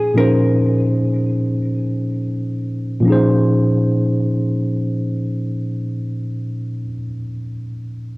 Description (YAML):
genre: hip hop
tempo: free time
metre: none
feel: none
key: Bb minor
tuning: A4 = 440 Hz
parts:
  - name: vintage hollow-body jazz guitar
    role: melody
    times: 0.0-0.9 s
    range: Ab4 to Bb4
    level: -22 LUFS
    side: left 1 dB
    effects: analog delay
  - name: mellow tine electric piano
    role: accompaniment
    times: 0.0-8.2 s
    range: Bb2 to C5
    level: -17 LUFS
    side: equal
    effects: medium stereo tremolo, cassette tape
room: little or no reverb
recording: home recording on cassette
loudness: -16 LUFS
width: side -22 dB against mid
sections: 0.0-3.1 A section; 3.1-5.9 B section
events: none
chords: 0.0 Bbm11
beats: free time